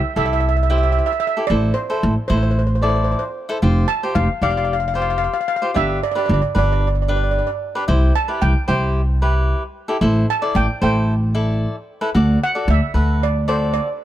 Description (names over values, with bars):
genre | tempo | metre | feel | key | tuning
calypso | 113 BPM | 4/4 | straight | C major | A4 = 438 Hz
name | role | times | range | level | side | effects
steel pan | melody | 0.0-14.0 s | C5 to A5 | -22 LUFS | right 3 dB | none
cavaquinho | accompaniment | 0.2-13.9 s | D4 to D5 | -23 LUFS | left 1 dB | none
upright bass | bass | 0.2-13.8 s | F1 to D2 | -17 LUFS | equal | none
room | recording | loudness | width
little or no reverb | none | -16 LUFS | side -12 dB against mid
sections
0.0-14.0 A section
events
none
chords
0.0 C; 1.5 Am; 3.6 Fsus2; 5.8 G; 7.9 C; 10.0 Am7; 12.1 D